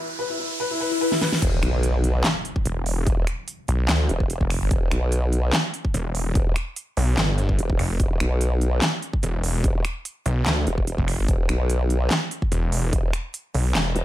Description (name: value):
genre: heavy wobble dubstep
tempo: 146 BPM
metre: 4/4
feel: swing 53% on 16ths, half-time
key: E phrygian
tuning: A4 = 439 Hz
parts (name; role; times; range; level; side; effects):
- warm concert grand piano; melody; 0.0-1.4 s; E4 to B4; -28 LUFS; left 2 dB; digital delay
- riser, swell, impact and reverse cymbal; sound effects; 0.0-3.1, 13.9-14.0 s; none; -28 LUFS; left 2 dB; none
- big-room dance drum kit; drums; 1.1-14.0 s; crash cymbal, finger snaps, handclaps, hi-hat, snare drum; -26 LUFS; equal; none
- formant-sweep wobble bass; bass; 1.4-14.0 s; E1 to B1; -22 LUFS; equal; chorus, overdrive
- electronic kick drum; drums; 1.4-13.0 s; none; -23 LUFS; equal; none
- snarling distorted saw bass; bass; 2.7-13.9 s; E1 to D2; -22 LUFS; equal; distortion, overdrive
room: digital ambience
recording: none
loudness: -20 LUFS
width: side -13 dB against mid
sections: 0.0-1.4 A section; 1.4-14.0 B section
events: break 0.0-1.4; build-up 0.0-1.4; riser 0.0-1.4; swell 0.6-1.4; drum fill 1.1-1.4; drop 1.4-14.0; impact 1.4-3.1; reverse cymbal 13.9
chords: 0.0 E5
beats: 0.19 0.60 1.01 | 1.42 1.83 2.24 2.65 | 3.07 3.48 3.89 4.30 | 4.71 5.12 5.53 5.94 | 6.35 6.76 7.17 7.59 | 8.00 8.41 8.82 9.23 | 9.64 10.05 10.46 10.87 | 11.29 11.70 12.11 12.52 | 12.93 13.34 13.75